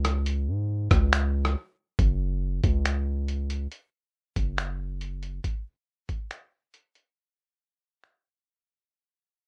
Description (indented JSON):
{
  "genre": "hip hop, atmospheric cloud-rap",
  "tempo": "139 BPM",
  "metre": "4/4",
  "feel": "half-time",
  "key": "unclear",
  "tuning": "A4 = 440 Hz",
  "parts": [
    { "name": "long sustained 808-style bass", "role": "bass", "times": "0.0-5.4 s", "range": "F#1 to G#2", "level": "-29 LUFS", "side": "equal", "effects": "none" },
    { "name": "lo-fi sampler-style drum kit", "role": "drums", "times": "0.0-8.1 s", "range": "finger snaps, hi-hat, kick drum, rim click", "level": "-28 LUFS", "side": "equal", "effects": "none" }
  ],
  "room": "little or no reverb",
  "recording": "rough home demo mix",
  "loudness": "-28 LUFS",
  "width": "mono",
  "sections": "0.0-2.0 A section; 2.0-8.9 B section",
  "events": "break 1.6-2.0, 7.2-8.9; fade-out 2.0-8.9",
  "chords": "none"
}